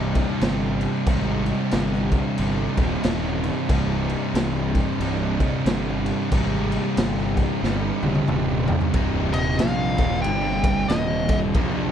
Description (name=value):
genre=stoner and doom metal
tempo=92 BPM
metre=4/4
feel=swing 60% on 8ths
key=C minor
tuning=A4 = 444 Hz
part: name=distorted electric guitar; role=riff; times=0.0-11.9 s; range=C2 to Eb4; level=-30 LUFS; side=right 1 dB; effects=overdrive
part: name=thick fuzz guitar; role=riff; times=0.0-11.9 s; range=C2 to C3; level=-28 LUFS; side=left 11 dB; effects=distortion
part: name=thick fuzz guitar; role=riff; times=0.0-11.9 s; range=C2 to C3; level=-27 LUFS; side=right 10 dB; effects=distortion
part: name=fuzz fingered electric bass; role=bass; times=0.0-11.9 s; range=C1 to Bb1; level=-27 LUFS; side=equal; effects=overdrive
part: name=raw garage drum kit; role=drums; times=0.2-11.7 s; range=crash cymbal, kick drum, ride cymbal, snare drum, toms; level=-25 LUFS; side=equal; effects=none
part: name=fuzz lead guitar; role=melody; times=9.3-11.4 s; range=Eb5 to G5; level=-26 LUFS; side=left 2 dB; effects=wah, distortion, slapback echo
room=little or no reverb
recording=none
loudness=-20 LUFS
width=side -9 dB against mid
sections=0.0-8.9 A section; 8.9-11.9 B section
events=drum fill 7.6-8.9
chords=0.0 Cm